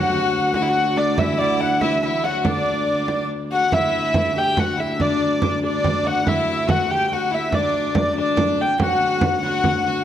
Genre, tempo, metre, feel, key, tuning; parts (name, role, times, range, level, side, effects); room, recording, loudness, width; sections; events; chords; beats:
medieval dance; 94 BPM (dotted quarters); 6/8; straight; D major; A4 = 439 Hz
dark hurdy-gurdy; melody; 0.0-10.0 s; D5 to G5; -20 LUFS; left 1 dB
lute; second line; 0.0-3.3, 8.8-10.0 s; D3 to F#3; -29 LUFS; right 9 dB
rich fiddle; second line; 0.0-10.0 s; D4 to G4; -25 LUFS; left 6 dB
warm viola da gamba; drone; 0.0-10.0 s; D2; -27 LUFS; equal
frame drum; percussion; 0.5-10.0 s; -24 LUFS; right 3 dB
moderate concert hall reverb, RT60 1.8 s; -17 LUFS; side -10 dB against mid
0.0-3.7 A section; 3.7-10.0 B section
0.54 | 1.18 1.81 | 2.45 3.08 | 3.72 4.35 | 4.99 5.62 | 6.26 6.89 | 7.53 8.16 | 8.80 9.43